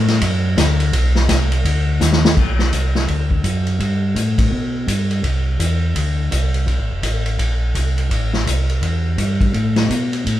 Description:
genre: soul jazz organ trio.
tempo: 167 BPM.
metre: 4/4.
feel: swing 62% on 8ths.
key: G major.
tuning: A4 = 440 Hz.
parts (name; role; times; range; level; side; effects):
mellow tonewheel organ; bass; 0.0-10.4 s; F1 to B2; -17 LUFS; equal; slow rotary speaker.
vintage drum kit; drums; 0.1-10.4 s; crash cymbal, hi-hat, kick drum, ride cymbal, snare drum; -20 LUFS; left 1 dB; none.
room: light reverb.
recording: band playing live in one room.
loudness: -15 LUFS.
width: side -13 dB against mid.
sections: 0.0-2.4 A section; 2.4-10.4 B section.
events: drum fill 2.0-2.4.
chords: none.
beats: 0.22 0.58 | 0.94 1.29 1.65 2.01 | 2.37 2.73 3.08 3.44 | 3.80 4.16 4.52 4.88 | 5.24 5.59 5.95 6.31 | 6.67 7.03 7.39 7.75 | 8.10 8.46 8.82 9.18 | 9.54 9.90 10.26.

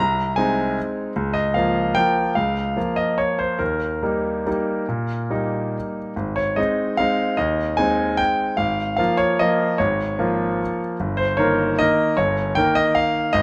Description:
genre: classical, piano waltz.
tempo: 136-160 BPM.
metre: 3/4.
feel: rubato.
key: Ab major.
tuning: A4 = 440 Hz.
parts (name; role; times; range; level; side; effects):
bright grand piano; solo; 0.0-13.4 s; G1 to Bb5; -21 LUFS; equal; none.
room: light reverb.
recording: close, detailed microphones.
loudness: -21 LUFS.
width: mono.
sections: 0.0-6.2 A section; 6.2-13.4 A section.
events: none.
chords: 0.0 Ab/C; 1.2 Bbm/Db; 3.6 Eb; 6.2 Ab; 8.6 Bbm7/Ab; 11.0 Eb7/G.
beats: 0.37 0.77 | 1.16 1.55 1.96 | 2.36 2.76 3.19 | 3.60 4.03 4.47 | 4.89 5.30 5.74 | 6.17 6.58 6.99 | 7.39 7.78 8.19 | 8.59 8.99 9.39 | 9.79 10.19 10.60 | 11.00 11.39 11.79 | 12.18 12.56 12.95 | 13.34.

